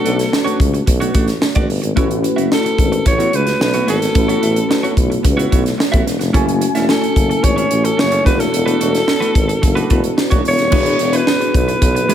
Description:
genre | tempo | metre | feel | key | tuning
polished 1980s jazz-funk pop | 110 BPM | 4/4 | straight | A major | A4 = 445 Hz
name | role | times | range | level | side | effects
growling alto saxophone | melody | 0.0-12.1 s | A4 to C#5 | -19 LUFS | equal | none
mellow tine electric piano | accompaniment | 0.0-12.1 s | A3 to G#5 | -20 LUFS | left 2 dB | medium stereo tremolo, ensemble chorus
clean electric guitar | riff | 0.0-12.1 s | G#3 to E5 | -23 LUFS | right 4 dB | lush chorus
warm tuba | bass | 0.1-12.1 s | D#1 to C#2 | -19 LUFS | equal | none
crisp fusion drum kit | drums | 0.1-12.1 s | crash cymbal, hi-hat, kick drum, snare drum | -17 LUFS | equal | gated reverb
room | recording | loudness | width
light reverb, studio ambience | none | -13 LUFS | side -10 dB against mid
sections
0.0-10.7 A section; 10.7-12.1 B section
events
none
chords
0.0 Bm9; 2.0 A69; 6.3 F#m7; 8.3 E9sus4; 10.7 E7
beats
0.32 0.87 1.42 | 1.96 2.51 3.06 3.61 | 4.16 4.70 5.25 5.80 | 6.34 6.89 7.44 7.99 | 8.54 9.08 9.63 10.18 | 10.73 11.27 11.82

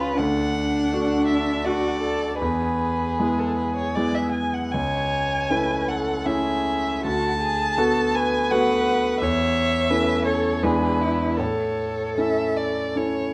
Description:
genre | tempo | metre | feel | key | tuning
classical, slow romantic movement for piano quintet | 72-88 BPM | 3/4 | rubato | A major | A4 = 440 Hz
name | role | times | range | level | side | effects
rich violin | melody | 0.0-12.9 s | A4 to A5 | -29 LUFS | equal | none
warm violin | second line | 0.0-13.3 s | D4 to E5 | -29 LUFS | equal | none
bright concert grand piano | accompaniment | 0.0-13.3 s | C#2 to G#4 | -26 LUFS | equal | none
room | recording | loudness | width
moderate large studio reverb, RT60 1.2 s | dark, warm production | -23 LUFS | mono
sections
0.0-13.3 A section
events
none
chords
0.2 D; 2.4 E; 4.7 A/C#; 7.0 Bm7/D; 9.2 A/E; 10.6 E7; 11.4 A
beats
| 0.19 0.92 1.65 | 2.41 3.18 3.96 | 4.74 5.51 6.26 | 7.05 7.78 8.51 | 9.21 9.90 10.62 | 11.38 12.17 12.95

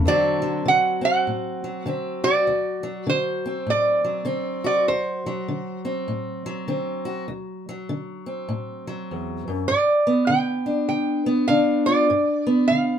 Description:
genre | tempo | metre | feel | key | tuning
acoustic country blues, solo or duo | 100 BPM | 4/4 | swing 62% on 8ths | D mixolydian | A4 = 443 Hz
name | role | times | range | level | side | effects
fingerpicked steel-string acoustic guitar | accompaniment | 0.0-13.0 s | D2 to F#4 | -24 LUFS | left 1 dB | none
lap resonator guitar | melody | 0.1-5.8, 9.7-13.0 s | C5 to G5 | -21 LUFS | right 2 dB | none
room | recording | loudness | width
moderate studio reverb, RT60 0.5 s | minimal, uncompressed stereo recording | -20 LUFS | side -8 dB against mid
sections
0.1-13.0 A section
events
none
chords
0.1 D7; 9.7 G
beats
| 0.06 0.66 1.26 1.86 | 2.46 3.06 3.66 4.26 | 4.87 5.47 6.07 6.67 | 7.27 7.88 8.48 9.08 | 9.68 10.28 10.88 11.48 | 12.09 12.69

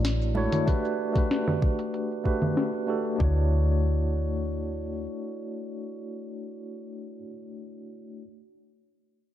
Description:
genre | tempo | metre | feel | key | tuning
sunset chillout | 95 BPM | 4/4 | straight | D major | A4 = 444 Hz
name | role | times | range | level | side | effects
tine electric piano | accompaniment | 0.0-8.2 s | A3 to D5 | -30 LUFS | equal | medium tremolo, auto-pan, digital delay
woody fretless electric bass | bass | 0.0-5.1 s | A1 to D2 | -25 LUFS | equal | none
smooth R&B drum kit | drums | 0.0-3.2 s | cabasa, congas, hi-hat, snare drum | -29 LUFS | equal | low-pass filter on hats, low-pass filter on perc, low-pass filter on snare
congas | percussion | 0.3-0.5 s | none | -37 LUFS | equal | none
electronic kick drum | drums | 0.7-3.3 s | none | -25 LUFS | equal | none
room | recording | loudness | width
light reverb | dark, warm production | -24 LUFS | side -11 dB against mid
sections
0.0-3.2 A section; 3.2-5.7 B section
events
filter sweep on drum 0.0-3.2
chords
0.0 Dmaj9; 0.7 Gmaj9; 3.2 Dmaj9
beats
0.04 | 0.68 1.31 1.94 2.57 | 3.20 3.83 4.46 5.10

